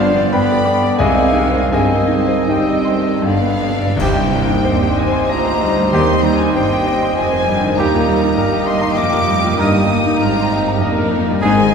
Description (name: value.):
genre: classical, romantic movement for piano and orchestra.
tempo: 78-104 BPM.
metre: 3/4.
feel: rubato.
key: C minor.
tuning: A4 = 440 Hz.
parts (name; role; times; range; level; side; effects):
bright symphonic violin section; melody; 0.0-11.7 s; F5 to Eb6; -26 LUFS; left 3 dB; none.
clear grand piano; melody; 0.0-11.7 s; C2 to D6; -18 LUFS; left 1 dB; none.
mellow clarinet; second line; 0.0-11.7 s; B3 to Ab4; -25 LUFS; right 1 dB; none.
mellow cor anglais; second line; 0.0-11.7 s; B4 to F5; -27 LUFS; right 1 dB; none.
mellow hollow silver concert flute; second line; 0.0-11.7 s; D5 to Eb6; -23 LUFS; left 1 dB; none.
rich symphonic violin section; second line; 0.0-11.7 s; C4 to Eb5; -26 LUFS; left 2 dB; none.
clear bassoon; accompaniment; 0.0-11.7 s; D3 to C4; -24 LUFS; right 1 dB; none.
warm symphonic viola section; accompaniment; 0.0-11.7 s; D3 to F4; -24 LUFS; right 2 dB; none.
dark French horn section; sustained chords; 0.0-11.6 s; F3 to Eb4; -28 LUFS; left 2 dB; none.
rich symphonic cello section; bass; 0.0-11.7 s; C2 to C3; -24 LUFS; right 3 dB; none.
rich symphonic double bass section; bass; 0.0-11.7 s; F1 to Eb2; -25 LUFS; right 2 dB; none.
timpani; percussion; 0.0-6.8 s; G2 to Eb3; -27 LUFS; left 1 dB; none.
warm trombone section; sustained chords; 4.0-11.6 s; C3 to Ab3; -28 LUFS; right 5 dB; none.
warm trumpet; stabs; 4.0-11.6 s; G4 to Bb4; -26 LUFS; right 3 dB; none.
clash cymbals and concert bass drum; percussion; 4.0-5.3 s; none; -30 LUFS; equal; none.
room: wet church reverb, RT60 3.3 s.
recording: recorded in a church or concert hall.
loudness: -13 LUFS.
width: side -6 dB against mid.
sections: 0.0-4.0 A section; 4.0-11.7 B section.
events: timpani fill 3.3-4.0; band accent 4.0-4.7.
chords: 0.0 G7; 1.0 Cm; 1.7 Cm/G; 3.3 G; 4.0 Cm; 7.8 Eb; 9.6 Eb/G.